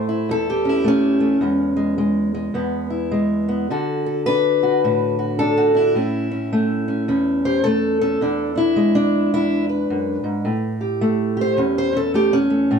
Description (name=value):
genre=acoustic country blues, solo or duo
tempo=106 BPM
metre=4/4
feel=swing 62% on 8ths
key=A major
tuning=A4 = 440 Hz
part: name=fingerpicked steel-string acoustic guitar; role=solo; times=0.0-12.8 s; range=E2 to C5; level=-17 LUFS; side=equal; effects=none
room=light reverb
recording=dark, warm production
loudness=-17 LUFS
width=side -6 dB against mid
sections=0.0-10.5 A section; 10.5-12.8 B section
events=steel-string acoustic guitar solo 10.5-12.8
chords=0.0 A7; 1.4 E; 3.7 D; 5.9 A; 8.2 E7; 10.5 A7